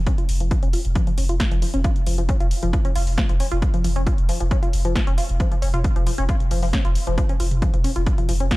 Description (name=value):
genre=driving peak-time techno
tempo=135 BPM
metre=4/4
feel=straight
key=unclear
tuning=A4 = 436 Hz
part: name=saturated sub bass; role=bass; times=0.0-8.5 s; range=F1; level=-23 LUFS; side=equal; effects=overdrive, sidechain pumping, low-pass filter
part: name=tight sequenced synth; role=riff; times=0.1-8.6 s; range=F3 to F4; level=-27 LUFS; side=left 1 dB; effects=chorus, tube saturation, sidechain pumping, tape echo
part: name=electronic kick drum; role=drums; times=0.1-8.6 s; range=none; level=-21 LUFS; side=equal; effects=overdrive, studio reverb
part: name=techno drum kit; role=drums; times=0.1-8.6 s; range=hi-hat, snare drum, toms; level=-30 LUFS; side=equal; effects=overdrive, sidechain pumping on hats, studio reverb, sidechain pumping on cymbals, sidechain pumping on toms
room=digital ambience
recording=dark, warm production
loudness=-18 LUFS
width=side -19 dB against mid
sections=0.0-8.6 A section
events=none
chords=none